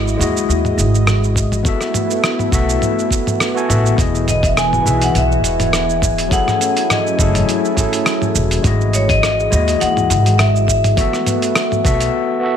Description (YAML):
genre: sunset chillout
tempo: 103 BPM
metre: 4/4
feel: swing 55% on 16ths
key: E major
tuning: A4 = 439 Hz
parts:
  - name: overdriven tine electric piano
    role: accompaniment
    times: 0.0-12.6 s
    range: E3 to G#5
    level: -20 LUFS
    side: moving between left 5 dB and right 6 dB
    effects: auto-pan, ping-pong delay
  - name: lush unison pad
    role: sustained chords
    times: 0.0-12.1 s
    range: E3 to G#5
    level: -23 LUFS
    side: left 2 dB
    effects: chorus
  - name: upright bass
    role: bass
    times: 0.0-12.1 s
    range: E1 to D#2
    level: -17 LUFS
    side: equal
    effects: tube saturation
  - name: dusty soul sampler-style drum kit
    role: drums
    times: 0.1-12.1 s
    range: hi-hat, rim click, shaker, toms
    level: -20 LUFS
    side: right 1 dB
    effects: overdrive, studio reverb
  - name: electronic kick drum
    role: drums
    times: 1.4-12.0 s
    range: none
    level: -18 LUFS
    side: equal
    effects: overdrive, studio reverb
  - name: vibraphone with medium hard mallets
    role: melody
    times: 4.3-12.1 s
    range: C#5 to G#5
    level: -19 LUFS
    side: left 2 dB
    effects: ping-pong delay
room: light reverb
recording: none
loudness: -13 LUFS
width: side -8 dB against mid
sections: 0.0-12.6 A section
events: break 12.1-12.6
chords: 0.0 Emaj7/G#; 1.7 B7sus4; 4.0 Emaj7; 6.3 F#m9; 8.6 Emaj7/G#; 11.0 B7sus4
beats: 0.49 1.08 | 1.66 2.24 2.82 3.41 | 3.99 4.57 5.15 5.74 | 6.32 6.90 7.48 8.07 | 8.65 9.23 9.81 10.40 | 10.98 11.56 12.14